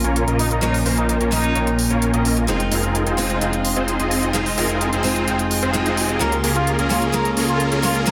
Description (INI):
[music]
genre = EDM, festival progressive house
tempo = 129 BPM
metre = 4/4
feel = straight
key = F minor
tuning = A4 = 440 Hz
[part]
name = picked steel-string acoustic guitar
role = accompaniment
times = 0.0-8.1 s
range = Bb2 to F4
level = -25 LUFS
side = equal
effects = delay
[part]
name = lush unison pad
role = sustained chords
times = 0.0-8.1 s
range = Db4 to C6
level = -30 LUFS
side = equal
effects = chorus, phaser, vintage 12-bit sampler grit
[part]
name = supersaw chords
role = riff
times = 0.0-8.1 s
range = Bb3 to Eb5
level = -25 LUFS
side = equal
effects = ensemble chorus, low-pass filter, delay
[part]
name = detuned saw bass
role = bass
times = 0.0-8.1 s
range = F1 to Db2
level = -27 LUFS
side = equal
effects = chorus
[part]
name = electronic hi-hat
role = drums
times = 0.0-8.1 s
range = none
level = -28 LUFS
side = equal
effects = none
[part]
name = riser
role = sound effects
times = 3.6-8.1 s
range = none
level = -36 LUFS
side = equal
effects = none
[part]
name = trumpet with plunger mute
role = melody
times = 0.4-1.8, 6.2-8.1 s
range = Eb4 to Bb4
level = -28 LUFS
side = equal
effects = delay
[sound]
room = moderate lush hall reverb, RT60 2.1 s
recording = dense, heavily limited modern master, high-pass filter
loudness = -19 LUFS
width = mono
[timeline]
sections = 0.0-8.1 A section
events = build-up 0.0-8.1; filter sweep on supersaw synth 0.0-8.1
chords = 0.0 Bbm; 2.5 Fm7; 6.2 Db6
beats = 0.16 | 0.62 1.09 1.55 2.02 | 2.48 2.95 3.42 3.88 | 4.35 4.81 5.28 5.74 | 6.21 6.67 7.14 7.60 | 8.07